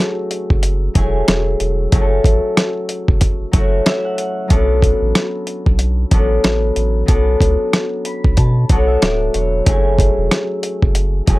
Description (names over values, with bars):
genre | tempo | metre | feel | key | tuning
hip hop, boom-bap hip-hop | 93 BPM | 4/4 | swing 58% on 16ths | F# minor | A4 = 439 Hz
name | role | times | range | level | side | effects
concert harp | accompaniment | 0.0-11.4 s | F#3 to B5 | -19 LUFS | left 1 dB | none
dusty soul sampler-style drum kit | drums | 0.3-11.4 s | hi-hat, kick drum, rim click, snare drum | -15 LUFS | equal | overdrive
warm sub bass | bass | 0.5-11.4 s | D1 to B2 | -17 LUFS | equal | transformer saturation
room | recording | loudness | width
little or no reverb | dry, gritty hardware recording | -13 LUFS | side -19 dB against mid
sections
0.0-11.4 A section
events
none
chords
0.0 F#m7; 4.5 Bm9; 9.7 F#m7